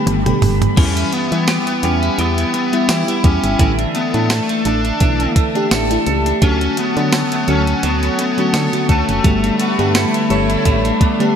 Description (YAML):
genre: 1980s-style pop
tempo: 85 BPM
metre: 4/4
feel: swing 55% on 16ths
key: A mixolydian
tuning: A4 = 445 Hz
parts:
  - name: FM electric piano with soft pad layer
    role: accompaniment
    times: 0.0-11.4 s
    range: D3 to F#5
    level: -20 LUFS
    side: equal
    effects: chorus
  - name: warm analog pad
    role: sustained chords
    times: 0.0-11.4 s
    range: G4 to B5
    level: -25 LUFS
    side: equal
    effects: chorus, shimmer reverb
  - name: solid FM bass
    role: bass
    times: 0.1-10.9 s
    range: F#1 to E3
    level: -20 LUFS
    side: equal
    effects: none
  - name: clean 12-bit digital drum machine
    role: drums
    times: 0.1-11.4 s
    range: crash cymbal, hi-hat, kick drum, snare drum, tambourine, toms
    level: -18 LUFS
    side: right 1 dB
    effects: none
  - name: dark smooth lead guitar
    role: melody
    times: 0.8-11.3 s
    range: A3 to E4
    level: -21 LUFS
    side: left 4 dB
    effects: overdrive, shimmer reverb, ping-pong delay
  - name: clean electric guitar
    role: riff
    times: 0.8-11.4 s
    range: E3 to A4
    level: -22 LUFS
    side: right 5 dB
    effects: lush chorus, shimmer reverb, ping-pong delay
  - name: warm studio violin section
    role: second line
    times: 9.6-11.4 s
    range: D4 to F#4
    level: -23 LUFS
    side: left 1 dB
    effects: shimmer reverb, ping-pong delay
room: moderate lush hall reverb, RT60 2.1 s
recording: bright 1980s-style digital production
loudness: -13 LUFS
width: side -8 dB against mid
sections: 0.0-11.4 A section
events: drum fill 0.0-0.8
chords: 0.0 Gadd9; 0.8 Em; 3.6 Asus4; 6.4 Dmaj7; 9.2 Gadd9